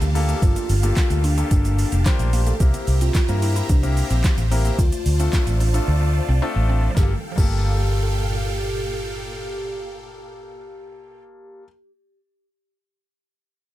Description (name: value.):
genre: dance-pop.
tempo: 110 BPM.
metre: 4/4.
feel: straight.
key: G dorian.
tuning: A4 = 440 Hz.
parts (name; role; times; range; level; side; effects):
hollow clarinet-like synth lead; melody; 0.0-11.6 s; C4 to Bb4; -30 LUFS; equal; chorus, tape echo.
clear concert grand piano; accompaniment; 0.0-11.7 s; A3 to C5; -31 LUFS; left 6 dB; none.
supersaw chords; sustained chords; 0.0-11.2 s; Bb2 to Bb5; -31 LUFS; right 2 dB; phaser, sidechain pumping.
mallet-like synth pluck; arpeggios; 0.0-11.7 s; D3 to F4; -34 LUFS; right 3 dB; chorus, sidechain pumping, tape echo.
vintage muted fingered electric bass; bass; 0.0-11.6 s; F1 to G2; -20 LUFS; equal; sidechain pumping.
smooth R&B drum kit; drums; 0.0-7.5 s; crash cymbal, handclaps, hi-hat, kick drum, shaker, snare drum; -21 LUFS; equal; none.
egg shaker; percussion; 0.0-7.5 s; none; -41 LUFS; right 8 dB; none.
room: little or no reverb.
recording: none.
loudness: -18 LUFS.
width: side -15 dB against mid.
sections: 0.0-7.0 A section; 7.0-11.3 B section.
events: silent gap 5.9-7.0.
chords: 0.0 Gm9; 2.6 C7; 4.8 Dm7; 7.0 Gm9.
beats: | 0.42 0.97 1.51 2.06 | 2.60 3.15 3.70 4.24 | 4.79 5.33 5.88 6.42 | 6.97 7.51 8.06 8.61 | 9.15 9.70 10.24 10.79.